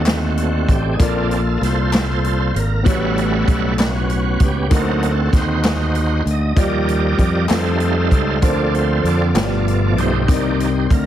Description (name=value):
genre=slow gospel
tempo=65 BPM (dotted quarters)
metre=6/8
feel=straight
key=unclear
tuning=A4 = 439 Hz
part: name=warm grand piano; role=accompaniment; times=0.0-11.1 s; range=G2 to D5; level=-23 LUFS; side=left 3 dB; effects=none
part: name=bright tonewheel organ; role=sustained chords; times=0.0-11.1 s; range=B2 to F#5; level=-21 LUFS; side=right 3 dB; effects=slow rotary speaker, overdrive, chorus vibrato
part: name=modern bright fingered electric bass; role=bass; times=0.0-11.1 s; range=G1 to F2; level=-19 LUFS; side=equal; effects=none
part: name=swinging big-band drum kit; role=drums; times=0.1-11.0 s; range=hi-hat, kick drum, snare drum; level=-18 LUFS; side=equal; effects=none
part: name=group handclap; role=percussion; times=0.1-9.6 s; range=none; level=-30 LUFS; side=left 3 dB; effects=none
room=light reverb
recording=heavily compressed radio sound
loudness=-15 LUFS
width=side -11 dB against mid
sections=0.0-11.1 A section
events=tonewheel organ solo 0.0-11.1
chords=0.0 D7b9; 1.0 Bbmaj7; 2.9 A13; 4.7 D7b9b13; 6.6 Ebmaj9; 7.5 F7; 8.4 Bbmaj9/D; 9.3 G7; 10.3 Cm9